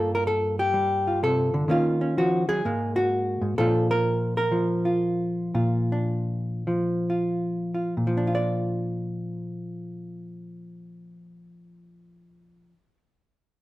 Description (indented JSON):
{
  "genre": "solo jazz",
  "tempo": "87-129 BPM",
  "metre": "4/4",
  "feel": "swing 67% on 8ths, rubato",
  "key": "Bb major",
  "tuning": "A4 = 439 Hz",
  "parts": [
    { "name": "hollow-body jazz guitar", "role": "solo", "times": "0.0-13.0 s", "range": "G2 to D5", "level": "-23 LUFS", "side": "equal", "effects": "none" }
  ],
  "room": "moderate studio reverb, RT60 0.8 s",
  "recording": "band playing live in one room",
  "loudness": "-23 LUFS",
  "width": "side -16 dB against mid",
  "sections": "0.0-8.0 A section; 8.0-13.4 B section",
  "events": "slowing down 3.6-8.0",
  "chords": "0.0 Gm9; 1.7 Ebm7; 2.6 Absus2; 3.6 Bb"
}